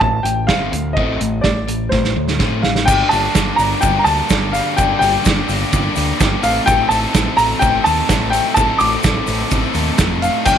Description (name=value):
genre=indie rock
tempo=126 BPM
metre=4/4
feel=straight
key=unclear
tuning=A4 = 440 Hz
part: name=dark upright piano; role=melody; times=0.0-10.6 s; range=C5 to D6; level=-17 LUFS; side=left 1 dB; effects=slapback echo
part: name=crunchy overdriven guitar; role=riff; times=0.0-10.6 s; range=G2 to Bb4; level=-20 LUFS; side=left 1 dB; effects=spring reverb
part: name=growling fingered electric bass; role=bass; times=0.0-10.6 s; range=F1 to A2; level=-22 LUFS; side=left 1 dB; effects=overdrive
part: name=loose indie drum kit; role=drums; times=0.0-10.6 s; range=crash cymbal, hi-hat, kick drum, snare drum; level=-19 LUFS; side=right 2 dB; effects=none
part: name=egg shaker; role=percussion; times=2.9-10.6 s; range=none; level=-29 LUFS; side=left 20 dB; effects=none
room=light reverb, small room ambience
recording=1960s-style stereo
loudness=-13 LUFS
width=side -8 dB against mid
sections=0.0-2.9 A section; 2.9-10.6 B section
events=drum fill 1.9-2.9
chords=0.0 Am; 2.9 Gmadd9; 6.4 Adim